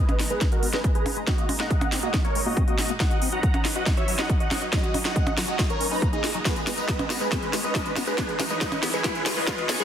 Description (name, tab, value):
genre	uplifting trance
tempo	139 BPM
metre	4/4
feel	straight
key	G# minor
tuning	A4 = 440 Hz
part	big supersaw lead	melody	0.0-9.8 s	D#4 to A#5	-29 LUFS	right 1 dB	phaser, sidechain pumping, low-pass filter, tape echo
part	lush unison pad	sustained chords	0.0-9.8 s	A#2 to A#5	-34 LUFS	equal	chorus, sidechain pumping
part	liquid acid bass	arpeggios	0.0-9.8 s	F#3 to F#4	-35 LUFS	left 3 dB	phaser, ensemble chorus, sidechain pumping, tape echo
part	riser	sound effects	3.4-9.8 s	none	-36 LUFS	equal	none
part	techno drum kit	drums	0.1-9.8 s	hi-hat, percussion blips, snare drum, tambourine	-28 LUFS	equal	none
part	electronic kick drum	drums	0.4-9.6 s	none	-25 LUFS	equal	none
room	light reverb, digital ambience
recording	dense, heavily limited modern master, high-pass filter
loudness	-22 LUFS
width	side -9 dB against mid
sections	0.0-9.8 A section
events	build-up 0.0-9.8; drum fill 0.0-9.8; filter sweep on supersaw synth 0.0-9.8; filter sweep on acid bass 0.0-9.8; filter sweep 0.0-9.8; riser 3.4-9.8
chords	0.0 G#madd9; 1.3 D#sus4/A#; 3.0 Badd9; 4.7 F#6; 6.5 G#madd9; 8.2 C#madd9